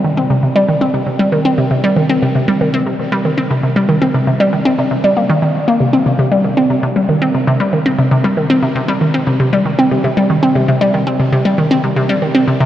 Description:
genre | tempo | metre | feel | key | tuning
ambient | 117 BPM | 4/4 | straight | C minor | A4 = 440 Hz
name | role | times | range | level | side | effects
hollow square pluck | solo | 0.0-12.7 s | C3 to C4 | -11 LUFS | equal | chorus, tape echo
room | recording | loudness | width
wet huge ambient reverb, RT60 7.9 s | worn, warbling old tape, cassette tape, warbly pitch drift | -11 LUFS | side -12 dB against mid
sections
0.0-12.7 A section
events
none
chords
none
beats
0.30 0.81 1.32 | 1.84 2.35 2.86 3.38 | 3.89 4.40 4.91 5.43 | 5.94 6.45 6.96 7.48 | 7.99 8.50 9.02 9.53 | 10.04 10.55 11.07 11.58 | 12.09 12.61

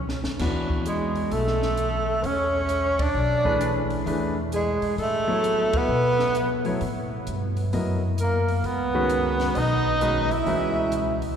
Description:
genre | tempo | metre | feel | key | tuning
modal jazz | 131 BPM | 4/4 | swing 66% on 8ths | E mixolydian | A4 = 438 Hz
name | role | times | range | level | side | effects
upright bass | bass | 0.0-11.3 s | B1 to B2 | -28 LUFS | left 1 dB | none
compact cocktail drum kit | drums | 0.1-11.3 s | crash cymbal, hi-hat, kick drum, ride cymbal, snare drum | -34 LUFS | equal | none
clear concert grand piano | accompaniment | 0.4-11.2 s | D#3 to D#5 | -30 LUFS | left 2 dB | none
breathy tenor saxophone | melody | 0.9-11.2 s | G#3 to E4 | -25 LUFS | right 2 dB | none
breathy alto saxophone | second line | 0.9-11.2 s | G#4 to E5 | -29 LUFS | equal | none
room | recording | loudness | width
wet cathedral reverb, RT60 4.8 s | recorded in a church or concert hall | -21 LUFS | side -8 dB against mid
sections
0.0-11.4 A section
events
drum fill 0.0-0.4; band accent 2.9, 5.7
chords
0.4 E9sus4; 7.7 F#9sus4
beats
| 0.40 0.86 1.32 1.78 | 2.24 2.69 3.15 3.61 | 4.07 4.53 4.98 5.44 | 5.90 6.35 6.81 7.27 | 7.72 8.18 8.64 9.10 | 9.55 10.01 10.46 10.92

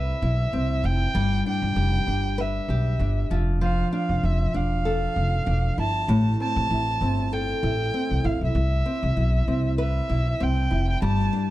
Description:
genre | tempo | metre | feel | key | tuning
acoustic pop | 97 BPM | 4/4 | swing 55% on 16ths | C major | A4 = 440 Hz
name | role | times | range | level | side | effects
dark violin | melody | 0.0-11.5 s | E5 to A5 | -29 LUFS | right 2 dB | none
nylon-string guitar | accompaniment | 0.0-11.5 s | A2 to B4 | -27 LUFS | left 1 dB | none
upright bass | bass | 0.0-11.3 s | E1 to C2 | -24 LUFS | equal | none
room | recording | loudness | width
little or no reverb | dark, warm production | -21 LUFS | side -15 dB against mid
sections
0.0-11.5 A section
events
none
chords
0.0 Cmaj7; 1.1 G; 3.3 Dmadd9; 6.1 Am7; 8.6 Cmaj7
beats
0.53 | 1.15 1.77 2.39 3.00 | 3.62 4.24 4.86 5.47 | 6.09 6.71 7.32 7.94 | 8.56 9.17 9.79 10.41 | 11.02

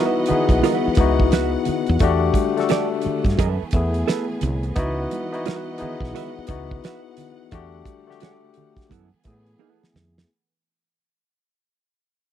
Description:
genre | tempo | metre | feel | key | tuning
R&B, neo-soul | 87 BPM | 4/4 | swing 64% on 16ths | C# minor | A4 = 439 Hz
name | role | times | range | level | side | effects
hollow-body jazz guitar | second line | 0.0-9.8 s | B3 to E5 | -24 LUFS | right 14 dB | none
barky tine electric piano | accompaniment | 0.0-10.3 s | A3 to A4 | -23 LUFS | moving between left 10 dB and left 1 dB | overdrive, auto-pan
warm studio string section | sustained chords | 0.0-10.3 s | D3 to F#5 | -32 LUFS | right 4 dB | none
woody fretless electric bass | bass | 0.3-10.2 s | B1 to A2 | -23 LUFS | right 1 dB | none
damped 70s drum kit | drums | 0.3-10.3 s | hi-hat, kick drum, snare drum | -22 LUFS | right 1 dB | none
congas | percussion | 0.3-10.1 s | none | -32 LUFS | right 9 dB | none
room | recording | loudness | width
little or no reverb | dry, close 1970s-style studio recording | -18 LUFS | side -10 dB against mid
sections
0.0-10.3 A section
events
fade-out 0.0-10.3; drum fill 9.6-10.3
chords
0.0 C#m11; 2.0 Em11; 3.4 F#m11; 4.8 C#m11; 7.5 Em11; 8.9 F#m11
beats
0.63 1.32 | 2.01 2.69 3.38 4.08 | 4.76 5.45 6.14 6.83 | 7.52 8.21 8.90 9.59

